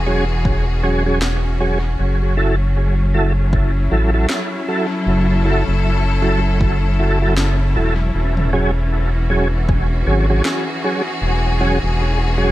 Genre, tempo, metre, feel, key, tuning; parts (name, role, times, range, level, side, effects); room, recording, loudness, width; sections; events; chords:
ambient dub; 78 BPM; 4/4; swing 59% on 16ths; F# minor; A4 = 442 Hz
clear symphonic string section; sustained chords; 0.0-12.5 s; E3 to A4; -23 LUFS; left 2 dB
round analog bass; bass; 0.0-12.5 s; E1 to A1; -17 LUFS; equal
tonewheel organ; stabs; 0.1-12.5 s; F#3 to A4; -21 LUFS; right 2 dB; chorus vibrato, fast rotary speaker, dub echo
electronic kick drum; drums; 0.5-9.9 s; -20 LUFS; equal; overdrive
organic electronic drum kit; drums; 1.2-10.6 s; snare drum, toms; -26 LUFS; equal; dub echo
little or no reverb; -15 LUFS; side -15 dB against mid
0.0-12.5 A section
0.0 E69; 2.0 F#m7; 8.1 E69